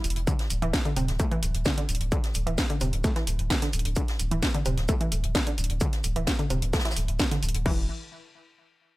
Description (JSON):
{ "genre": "driving peak-time techno", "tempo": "130 BPM", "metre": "4/4", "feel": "straight", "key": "unclear", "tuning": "A4 = 440 Hz", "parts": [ { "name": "saturated sub bass", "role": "bass", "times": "0.0-7.9 s", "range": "D1 to E1", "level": "-28 LUFS", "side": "equal", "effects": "overdrive, sidechain pumping, low-pass filter" }, { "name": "jazz brush drum kit", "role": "drums", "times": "0.0-7.7 s", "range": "hi-hat, shaker, snare drum", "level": "-37 LUFS", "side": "left 1 dB", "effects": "sidechain pumping on hats, high-pass filter on hats, high-pass filter on snare, sidechain pumping on perc, high-pass filter on perc, high-pass filter on room" }, { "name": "techno drum kit", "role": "drums", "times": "0.0-7.8 s", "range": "crash cymbal, hi-hat, snare drum", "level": "-31 LUFS", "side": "equal", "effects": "overdrive" }, { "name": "analog pluck", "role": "riff", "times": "0.3-7.9 s", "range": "C3 to A3", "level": "-32 LUFS", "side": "equal", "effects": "chorus, overdrive, sidechain pumping, tape echo" }, { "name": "electronic kick drum", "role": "drums", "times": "0.3-7.8 s", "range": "none", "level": "-28 LUFS", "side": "equal", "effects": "distortion, overdrive" } ], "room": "light reverb, studio ambience", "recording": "none", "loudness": "-24 LUFS", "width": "side -19 dB against mid", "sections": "0.0-7.7 A section; 7.7-9.0 B section", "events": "none", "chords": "0.3 D5; 7.7 N.C." }